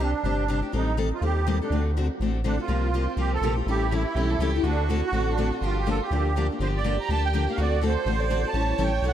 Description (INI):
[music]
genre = acoustic string swing (jazz manouche)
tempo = 246 BPM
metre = 4/4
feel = swing 56% on 8ths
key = G minor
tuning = A4 = 440 Hz
[part]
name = musette accordion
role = melody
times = 0.0-9.1 s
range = D4 to Bb5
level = -29 LUFS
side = right 5 dB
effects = diffuse ambient delay
[part]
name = picked steel-string acoustic guitar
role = accompaniment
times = 0.0-9.1 s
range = C3 to A4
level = -28 LUFS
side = left 5 dB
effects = wide subtle chorus
[part]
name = round analog bass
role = bass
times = 0.0-9.1 s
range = G1 to Eb2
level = -25 LUFS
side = equal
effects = none
[part]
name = warm violin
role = second line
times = 2.7-9.1 s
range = C4 to D5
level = -32 LUFS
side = right 5 dB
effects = none
[sound]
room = light reverb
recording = none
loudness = -22 LUFS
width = side -10 dB against mid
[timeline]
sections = 0.0-6.6 A section; 6.6-9.1 B section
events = none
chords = 0.0 Csus2; 0.7 Am7b5; 1.7 D7; 2.7 C7sus4; 3.7 A7; 4.6 D7; 5.6 Gm7; 7.6 D7; 8.6 A7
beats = 0.00 0.25 0.49 | 0.73 0.98 1.22 1.47 | 1.71 1.96 2.20 2.44 | 2.69 2.93 3.18 3.42 | 3.66 3.91 4.15 4.40 | 4.64 4.89 5.13 5.38 | 5.62 5.86 6.11 6.35 | 6.60 6.84 7.09 7.33 | 7.58 7.82 8.06 8.31 | 8.55 8.80 9.04